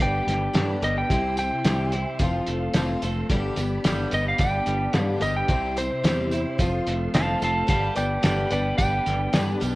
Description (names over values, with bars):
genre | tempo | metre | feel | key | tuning
folk rock and heartland rock | 109 BPM | 4/4 | straight | unclear | A4 = 440 Hz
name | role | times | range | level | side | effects
lightly driven lead guitar | melody | 0.0-9.8 s | C5 to A5 | -26 LUFS | right 1 dB | slapback echo
picked twelve-string acoustic guitar | accompaniment | 0.0-9.8 s | G2 to B4 | -29 LUFS | left 2 dB | none
tonewheel organ | sustained chords | 0.0-9.8 s | G4 to C6 | -39 LUFS | equal | slow rotary speaker, chorus vibrato
twelve-string electric guitar | riff | 0.0-9.8 s | C3 to E4 | -32 LUFS | right 1 dB | none
fingered electric bass | bass | 0.0-9.8 s | F1 to G2 | -28 LUFS | equal | none
cloth-damped thuddy drum kit | drums | 0.0-9.7 s | hi-hat, kick drum, snare drum | -25 LUFS | equal | none
tambourine | percussion | 1.4-9.7 s | none | -44 LUFS | right 4 dB | none
room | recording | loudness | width
light reverb, small room ambience | worn, warbling old tape, cassette tape, warbly pitch drift | -21 LUFS | side -20 dB against mid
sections
0.0-9.8 A section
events
lead electric guitar solo 0.0-9.8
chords
0.0 G; 1.1 C; 2.2 F; 3.3 G; 5.5 C; 6.6 F; 7.7 G